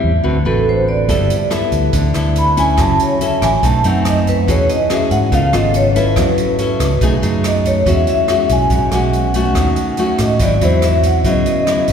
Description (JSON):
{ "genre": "bossa nova", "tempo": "142 BPM", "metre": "4/4", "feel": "straight", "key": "E major", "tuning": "A4 = 440 Hz", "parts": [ { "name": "nylon-string guitar", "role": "accompaniment", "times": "0.0-11.9 s", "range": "G#2 to B4", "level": "-18 LUFS", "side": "left 2 dB", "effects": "none" }, { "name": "fingered electric bass", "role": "bass", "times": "0.0-11.9 s", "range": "F#1 to A2", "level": "-17 LUFS", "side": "equal", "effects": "none" }, { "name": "vibraphone with medium mallets", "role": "melody", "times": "0.5-11.9 s", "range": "A4 to B5", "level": "-17 LUFS", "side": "equal", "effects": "none" }, { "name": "open jazz drum kit", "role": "drums", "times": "1.1-11.9 s", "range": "hi-hat, kick drum, rim click", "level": "-22 LUFS", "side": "right 1 dB", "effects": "none" } ], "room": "wet cathedral reverb, RT60 4.9 s", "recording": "recorded in a church or concert hall", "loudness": "-12 LUFS", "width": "side -7 dB against mid", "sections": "0.0-7.9 A section; 7.9-11.9 B section", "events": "vibraphone solo 0.0-7.9", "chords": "0.2 D6; 1.1 G69; 2.8 F#m7; 3.6 B7b9; 4.5 E69; 5.3 C#7b13; 6.2 F#m7; 7.0 B6; 7.9 E69; 9.6 D#m7b5; 10.4 G#aug7; 11.2 C#m11" }